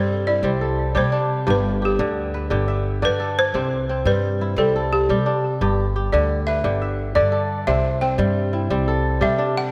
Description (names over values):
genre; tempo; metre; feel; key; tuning
west african traditional, West African string and xylophone music; 116 BPM (dotted quarters); 12/8; straight; C major; A4 = 441 Hz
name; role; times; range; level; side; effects
balafon; melody; 0.0-9.7 s; G4 to G5; -26 LUFS; equal; analog delay
kora; arpeggios; 0.0-9.7 s; G2 to E5; -25 LUFS; equal; none
upright bass; bass; 0.0-9.7 s; G1 to C3; -26 LUFS; equal; none
room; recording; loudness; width
moderate plate reverb, RT60 2.9 s; dreamy mix soaked in reverb; -21 LUFS; mono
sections
0.0-9.7 A section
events
balafon solo 0.0-9.7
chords
0.0 C; 1.5 G; 3.5 C; 5.6 G; 7.7 C